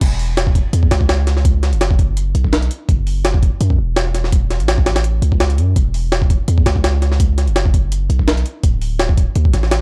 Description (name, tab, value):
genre	drum and bass, jungle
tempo	167 BPM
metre	4/4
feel	swing 54% on 16ths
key	unclear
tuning	A4 = 444 Hz
part	long sustained 808-style bass	bass	0.0-9.8 s	D1 to F#2	-19 LUFS	equal	none
part	jungle sampler-style drum kit	drums	0.0-9.8 s	crash cymbal, hi-hat, kick drum, snare drum	-18 LUFS	equal	overdrive, small room ambience
room	little or no reverb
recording	dry, gritty hardware recording, transformer saturation, cassette tape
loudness	-16 LUFS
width	mono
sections	0.0-9.8 A section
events	drop 0.0-9.8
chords	none